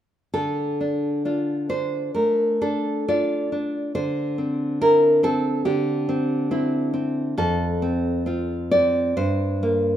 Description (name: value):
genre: romantic piece for solo classical guitar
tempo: 62-72 BPM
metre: 4/4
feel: rubato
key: D minor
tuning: A4 = 437 Hz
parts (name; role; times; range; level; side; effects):
- nylon-string guitar; solo; 0.3-10.0 s; F2 to D5; -20 LUFS; equal; none
room: moderate recital hall reverb, RT60 1.6 s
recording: minimal, uncompressed stereo recording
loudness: -20 LUFS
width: side -10 dB against mid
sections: 0.3-10.0 A section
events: none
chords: 0.3 Dm; 4.0 C/D; 7.4 F; 9.2 Edim/G (rootless)